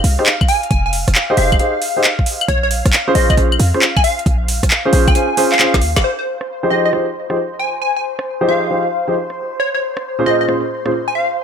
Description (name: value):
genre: UK garage, two-step garage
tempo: 135 BPM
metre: 4/4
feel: swing 67% on 16ths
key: unclear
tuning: A4 = 438 Hz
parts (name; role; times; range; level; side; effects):
- airy breathy pad; sustained chords; 0.0-11.4 s; C5 to F5; -25 LUFS; left 2 dB; chorus, sidechain pumping
- short 808-style bass; bass; 0.0-6.0 s; F1 to F2; -16 LUFS; equal; none
- garage drum kit; drums; 0.0-10.9 s; claves, handclaps, hi-hat, rim click, snare drum; -17 LUFS; equal; overdrive, low-pass filter on hats, low-pass filter on snare, low-pass filter on perc
- dark concert grand piano; stabs; 0.2-10.9 s; Bb2 to C5; -18 LUFS; equal; low-pass filter, dub echo
- electronic kick drum; drums; 0.4-5.8 s; none; -16 LUFS; equal; overdrive
- plucky unison lead; melody; 0.5-11.3 s; C5 to Ab5; -20 LUFS; equal; phaser, dub echo
room: light reverb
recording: none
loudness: -13 LUFS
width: side -7 dB against mid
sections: 0.0-6.0 A section; 6.0-11.4 B section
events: drum fill 5.7-6.0; band accent 5.9; filter sweep on drum 6.0-11.4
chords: 0.0 Fm7; 2.5 Bbm9; 6.0 Fm7; 9.6 Bbm9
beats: 0.26 | 0.71 1.15 1.60 2.04 | 2.48 2.93 3.37 3.82 | 4.26 4.71 5.15 5.60 | 6.04 6.49 6.93 7.37 | 7.82 8.26 8.71 9.15 | 9.60 10.04 10.48 10.93 | 11.37